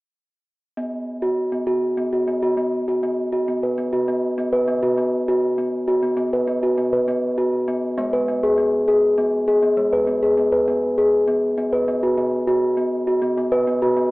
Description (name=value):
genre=world meditative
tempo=67 BPM (dotted quarters)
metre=6/8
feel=straight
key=unclear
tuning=A4 = 442 Hz
part: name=steel tongue drum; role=arpeggios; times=0.8-14.1 s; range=G#3 to B4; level=-18 LUFS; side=equal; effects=none
room=moderate scoring stage reverb, RT60 1.9 s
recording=telephone sound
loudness=-18 LUFS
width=side -20 dB against mid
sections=0.8-4.4 A section; 4.4-14.1 B section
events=none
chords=0.8 B5; 8.0 G#m; 11.6 B5